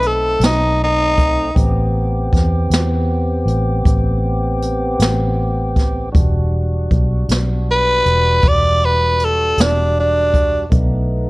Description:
slow blues; 52 BPM (dotted quarters); 12/8; straight; E minor; A4 = 440 Hz
growling tenor saxophone; melody; 0.0-10.7 s; D4 to D5; -15 LUFS; equal
tonewheel organ; sustained chords; 0.0-11.3 s; G3 to G4; -24 LUFS; equal; slow rotary speaker
vintage muted fingered electric bass; bass; 0.0-11.3 s; E1 to E2; -18 LUFS; equal
jazz brush drum kit; drums; 0.0-10.9 s; hi-hat, kick drum, snare drum; -17 LUFS; equal
light reverb, small room ambience; worn, warbling old tape, cassette tape, warbly pitch drift; -13 LUFS; side -21 dB against mid
0.0-11.3 A section
0.0 B7b9; 1.6 Am9; 6.1 Em9; 10.7 B7

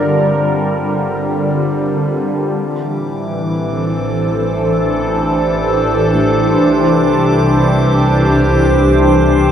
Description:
ambient; free time; A4 = 440 Hz
warm velvety synth lead; melody; 0.0-1.5 s; D5; -23 LUFS; right 1 dB; chorus, tape echo
evolving wavetable pad; sustained chords; 0.0-9.5 s; D3 to C5; -13 LUFS; equal; phaser, built-in reverb
dark studio double bass section; bass; 0.0-9.5 s; G1 to C2; -19 LUFS; equal
drifting glass-harmonics texture; texture; 3.2-9.5 s; D6; -29 LUFS; right 3 dB; chorus, built-in reverb
felt-muted upright piano; arpeggios; 3.1-9.5 s; G3 to D4; -32 LUFS; left 1 dB
wet cathedral reverb, RT60 7.2 s; -12 LUFS; side -9 dB against mid
0.0-2.6 A section; 2.6-9.5 B section
filter sweep on ambient pad 0.0-2.6; fade-in on synth texture 2.6-9.5
0.0 Gm; 2.6 Am7; 6.6 C

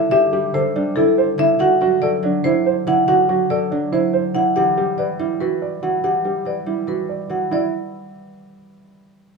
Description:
classical, minimalist pattern music; 284 BPM (eighths); 7/8; straight; A4 = 440 Hz
marimba with medium hard mallets; melody; 0.0-7.7 s; A4 to F#5; -19 LUFS; left 3 dB
concert harp; accompaniment; 0.0-7.7 s; D3 to G3; -26 LUFS; left 1 dB
dark grand piano; arpeggios; 0.0-7.7 s; D4 to D5; -20 LUFS; right 6 dB
moderate large studio reverb, RT60 0.8 s; -16 LUFS; side -4 dB against mid
0.0-7.5 A section; 7.5-9.0 B section
0.0 C6; 1.6 D7; 4.6 Gmaj7; 7.5 N.C.

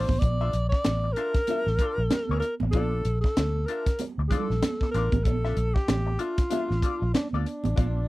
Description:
funk; 95 BPM; 4/4; swing 60% on 16ths; A4 = 440 Hz
breathy alto saxophone; melody; 0.0-8.1 s; D4 to D5; -30 LUFS; equal
vintage hollow-body jazz guitar; accompaniment; 0.0-8.1 s; D4 to E5; -34 LUFS; left 7 dB; wah
vintage muted fingered electric bass; bass; 0.0-8.1 s; A1 to D2; -26 LUFS; equal
tight funk drum kit; drums; 0.1-8.0 s; hi-hat, kick drum, snare drum; -26 LUFS; equal
congas; percussion; 0.1-8.0 s; -34 LUFS; right 6 dB
little or no reverb; dry, close 1970s-style studio recording; -24 LUFS; side -19 dB against mid
0.0-8.1 A section
0.0 Bbmaj7

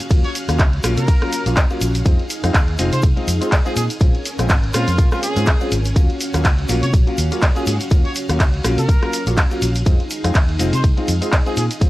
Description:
filtered disco house; 123 BPM; 4/4; swing 56% on 16ths; Eb dorian; A4 = 443 Hz
string machine, full ensemble; sustained chords; 0.0-11.9 s; Db4 to Ab5; -28 LUFS; right 1 dB; ensemble chorus, vintage 12-bit sampler grit, sidechain pumping
house drum kit; drums; 0.0-11.9 s; handclaps, hi-hat, ride cymbal, rim click, shaker; -24 LUFS; equal; sidechain pumping on hats, sidechain pumping on perc, sidechain pumping on cymbals
tube shaker; percussion; 0.0-11.9 s; -37 LUFS; left 1 dB; sidechain pumping on perc
clear grand piano; accompaniment; 0.1-11.9 s; Gb3 to F4; -25 LUFS; left 2 dB; phaser, sidechain pumping
fingered electric bass; bass; 0.1-11.9 s; F1 to C3; -20 LUFS; equal; sidechain pumping
electronic kick drum; drums; 0.1-11.9 s; -15 LUFS; equal
clear trumpet section; melody; 0.2-11.7 s; F4 to Db5; -27 LUFS; equal; sidechain pumping
little or no reverb; dry, gritty hardware recording, lossy compression artefacts; -15 LUFS; side -17 dB against mid
0.0-11.9 A section
0.0 Ebm9 (rootless); 2.1 Fm7; 4.0 Bbm7; 6.0 Ebm9; 9.9 Fm7

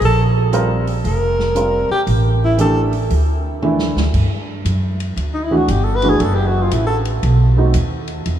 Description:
jazz, small-group swing and bop; 116 BPM; 4/4; swing 66% on 8ths; A4 = 441 Hz
upright bass; bass; 0.0-8.4 s; F1 to G2; -17 LUFS; right 1 dB
open jazz drum kit; drums; 0.0-8.4 s; crash cymbal, hi-hat, kick drum, ride cymbal, snare drum, toms; -28 LUFS; right 1 dB
breathy alto saxophone; melody; 0.1-7.0 s; Eb4 to B4; -20 LUFS; left 1 dB
dark baby grand piano; accompaniment; 0.5-7.7 s; E3 to Bb4; -21 LUFS; right 2 dB
moderate cathedral reverb, RT60 5.8 s; in a vast, echoing space, small room ambience; -14 LUFS; side -10 dB against mid
0.0-4.1 A section; 4.1-8.4 B section
drum fill 3.6-4.1; alto saxophone solo 4.1-8.4
0.0 Bb5; 2.1 A5; 3.1 D5; 4.1 G5; 6.2 F#m; 7.2 B7b9

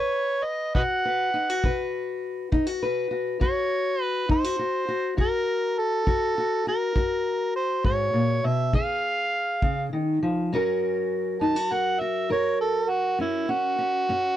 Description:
acoustic country blues, solo or duo; 68 BPM (dotted quarters); 12/8; straight; F# major; A4 = 441 Hz
overdriven harmonica; melody; 0.0-14.4 s; E4 to A5; -25 LUFS; right 2 dB
fingerpicked steel-string acoustic guitar; accompaniment; 0.0-14.4 s; F#2 to B4; -26 LUFS; left 2 dB
kick drum; drums; 0.7-9.8 s; -25 LUFS; equal
little or no reverb; dry, close 1970s-style studio recording; -23 LUFS; side -12 dB against mid
0.0-10.5 A section; 10.5-14.4 B section
harmonica solo 10.5-14.4
0.0 B5; 3.4 F#; 8.7 C#; 10.5 F#

